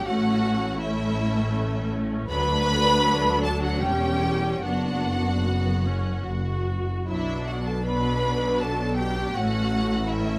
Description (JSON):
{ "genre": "classical, slow romantic movement for string orchestra", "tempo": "72-82 BPM", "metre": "3/4", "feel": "rubato", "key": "B minor", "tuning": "A4 = 437 Hz", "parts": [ { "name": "warm symphonic violin section", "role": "melody", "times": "0.0-10.4 s", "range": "E5 to B5", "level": "-32 LUFS", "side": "equal", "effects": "none" }, { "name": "warm symphonic violin section", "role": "second line", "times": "0.0-10.4 s", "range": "E4 to B4", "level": "-32 LUFS", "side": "equal", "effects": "none" }, { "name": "rich symphonic double bass section", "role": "bass", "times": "0.0-10.4 s", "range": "E1 to D2", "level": "-31 LUFS", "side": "equal", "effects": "none" }, { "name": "warm studio cello section", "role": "bass", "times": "0.0-10.4 s", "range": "D2 to B2", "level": "-31 LUFS", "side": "equal", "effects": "none" }, { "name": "rich symphonic viola section", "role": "accompaniment", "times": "0.1-10.4 s", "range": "F#3 to F#4", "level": "-32 LUFS", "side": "equal", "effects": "none" } ], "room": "light reverb", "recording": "none", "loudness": "-25 LUFS", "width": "mono", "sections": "0.0-10.4 A section", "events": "none", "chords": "0.0 A; 2.3 D; 3.8 C#dim/E; 4.6 Bm/F#; 6.3 N.C.; 7.1 Bm; 9.3 A" }